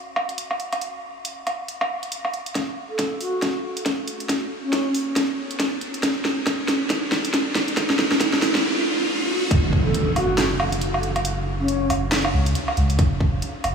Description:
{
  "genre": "deep dubstep",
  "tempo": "138 BPM",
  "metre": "4/4",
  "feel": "swing 59% on 16ths, half-time",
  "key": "F# minor",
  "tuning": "A4 = 440 Hz",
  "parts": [
    { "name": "garage drum kit", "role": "drums", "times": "0.2-13.7 s", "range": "handclaps, hi-hat, snare drum, woodblock", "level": "-23 LUFS", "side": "equal", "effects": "overdrive, small room ambience" },
    { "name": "electronic kick drum", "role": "drums", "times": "2.6-9.8, 13.0-13.3 s", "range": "none", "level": "-23 LUFS", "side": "equal", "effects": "overdrive, high-pass filter on kick, small room ambience" },
    { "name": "riser and impact", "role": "sound effects", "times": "4.2-11.2 s", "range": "none", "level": "-27 LUFS", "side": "right 1 dB", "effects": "none" },
    { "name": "mellow long shakuhachi", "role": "melody", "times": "2.9-4.9, 9.9-11.9 s", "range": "C#4 to A4", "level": "-28 LUFS", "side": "equal", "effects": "vintage 12-bit sampler grit, dub echo" },
    { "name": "saturated sub bass", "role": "bass", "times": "9.5-13.7 s", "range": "F#1 to C#2", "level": "-24 LUFS", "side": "equal", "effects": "none" }
  ],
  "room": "wet huge ambient reverb, RT60 8.8 s",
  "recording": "dreamy mix soaked in reverb, small room reverb",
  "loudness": "-20 LUFS",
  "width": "side -6 dB against mid",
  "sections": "0.0-2.6 A section; 2.6-9.5 B section; 9.5-13.7 C section",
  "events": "build-up 2.6-9.5; drum fill 2.6-8.6; riser 4.2-9.5; break 8.6-9.5; drop 9.5-13.7; impact 9.5-11.2",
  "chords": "none",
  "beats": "0.38 | 0.81 1.25 1.68 2.12 | 2.55 2.99 3.42 3.86 | 4.29 4.73 5.16 5.60 | 6.03 6.47 6.90 7.34 | 7.77 8.21 8.64 9.07 | 9.51 9.95 10.38 10.81 | 11.25 11.68 12.12 12.55 | 12.99 13.42"
}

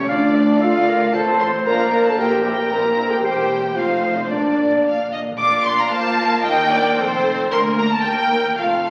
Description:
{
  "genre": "quick classical-period movement for symphony orchestra",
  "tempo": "113 BPM",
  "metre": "2/4",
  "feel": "straight",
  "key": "Bb major",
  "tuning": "A4 = 440 Hz",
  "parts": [
    { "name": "rich chamber violin section", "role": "melody", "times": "0.0-8.9 s", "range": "A4 to D6", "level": "-24 LUFS", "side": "equal", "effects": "none" },
    { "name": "rich chamber violin section", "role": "second line", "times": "0.0-8.9 s", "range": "A4 to C6", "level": "-28 LUFS", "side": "equal", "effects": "none" },
    { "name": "silver concert flute", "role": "second line", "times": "0.0-4.8 s", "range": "C5 to C6", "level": "-29 LUFS", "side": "equal", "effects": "none" },
    { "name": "warm clarinet", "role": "second line", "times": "0.0-5.1 s", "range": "A4 to F5", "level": "-25 LUFS", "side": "equal", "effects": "none" },
    { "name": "rich symphonic viola section", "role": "accompaniment", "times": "0.0-8.9 s", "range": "A3 to D5", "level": "-27 LUFS", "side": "equal", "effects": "none" },
    { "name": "warm French horn section", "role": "sustained chords", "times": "0.0-4.8 s", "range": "C4 to C5", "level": "-22 LUFS", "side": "equal", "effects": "none" },
    { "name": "warm chamber cello section", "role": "bass", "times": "0.0-8.9 s", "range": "D2 to Bb3", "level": "-30 LUFS", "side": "equal", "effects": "none" },
    { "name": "warm chamber double bass section", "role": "bass", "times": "0.0-8.9 s", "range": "E1 to Bb2", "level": "-34 LUFS", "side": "equal", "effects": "none" },
    { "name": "timpani", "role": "percussion", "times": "2.2-6.2 s", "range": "Bb2", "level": "-46 LUFS", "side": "equal", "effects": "none" }
  ],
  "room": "wet recital hall reverb, RT60 1.4 s",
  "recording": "very old 78 rpm record, vinyl crackle",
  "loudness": "-18 LUFS",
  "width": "mono",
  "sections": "0.0-5.4 A section; 5.4-8.9 B section",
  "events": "timpani fill 4.3-5.4",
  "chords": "0.1 Dm; 1.1 F/A; 1.7 Bb; 2.2 C7/Bb; 3.2 C7/E; 3.8 F7; 4.3 Bb; 6.5 Eb; 7.0 F; 7.5 Bb/D; 8.0 Eb",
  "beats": "| 0.09 0.61 | 1.14 1.66 | 2.19 2.71 | 3.24 3.77 | 4.31 4.85 | 5.40 5.93 | 6.46 6.98 | 7.51 8.04 | 8.57"
}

